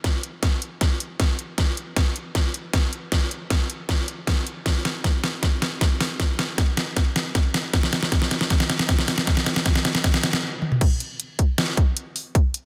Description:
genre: future bass.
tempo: 156 BPM.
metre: 4/4.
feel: half-time.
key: none.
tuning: none.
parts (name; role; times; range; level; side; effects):
electronic kick drum; drums; 0.0-12.4 s; none; -23 LUFS; equal; none.
pop drum kit; drums; 0.0-12.6 s; crash cymbal, hi-hat, snare drum, toms; -26 LUFS; equal; overdrive.
room: moderate lush hall reverb, RT60 1.8 s.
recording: dense, heavily limited modern master.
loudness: -23 LUFS.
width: mono.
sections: 0.0-10.8 A section; 10.8-12.7 B section.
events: build-up 0.0-10.8; drum fill 0.0-10.4, 10.6; stop 10.4-10.8; drop 10.8-12.7.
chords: none.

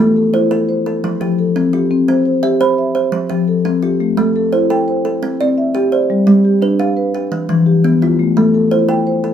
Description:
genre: southern african traditional, mbira-style interlocking cycle.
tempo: 115 BPM (dotted quarters).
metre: 12/8.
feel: straight.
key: unclear.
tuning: A4 = 442 Hz.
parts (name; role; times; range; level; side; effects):
kalimba; arpeggios; 0.0-9.3 s; E3 to E5; -17 LUFS; right 4 dB; none.
marimba with soft mallets; arpeggios; 0.0-9.3 s; E3 to B5; -14 LUFS; left 3 dB; none.
room: moderate studio reverb, RT60 0.6 s.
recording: none.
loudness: -12 LUFS.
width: side -9 dB against mid.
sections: 0.0-9.3 A section.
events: none.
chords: 0.0 Am; 0.9 F; 1.9 C; 3.0 F; 4.0 Am; 5.0 C; 6.1 G; 7.1 Em; 8.2 Am.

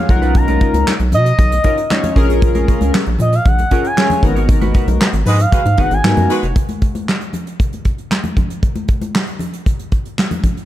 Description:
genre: early-eighties boogie funk.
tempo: 116 BPM.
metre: 4/4.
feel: straight.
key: G# dorian.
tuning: A4 = 440 Hz.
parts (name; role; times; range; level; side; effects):
expressive synth lead; melody; 0.0-6.3 s; D#5 to A#5; -19 LUFS; equal; chorus, slapback echo.
chorused polysynth; accompaniment; 0.0-6.4 s; B3 to C#5; -20 LUFS; left 3 dB; none.
clean electric guitar; riff; 0.1-6.6 s; C#4 to C#5; -27 LUFS; right 5 dB; lush chorus.
rubbery square bass; bass; 0.1-6.5 s; E#1 to B2; -15 LUFS; equal; none.
soft brush drum kit; drums; 0.1-10.7 s; handclaps, hi-hat, kick drum, snare drum; -16 LUFS; equal; none.
congas; percussion; 0.4-10.6 s; none; -24 LUFS; left 2 dB; none.
clear horn section; second line; 5.3-6.5 s; G#3 to B4; -24 LUFS; left 1 dB; none.
room: studio ambience.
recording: none.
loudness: -13 LUFS.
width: side -13 dB against mid.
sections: 0.0-6.6 A section; 6.6-10.7 B section.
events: band accent 4.5-6.6.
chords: 0.1 Bmaj9#11; 2.2 A#m7; 4.2 G#m7; 6.6 N.C..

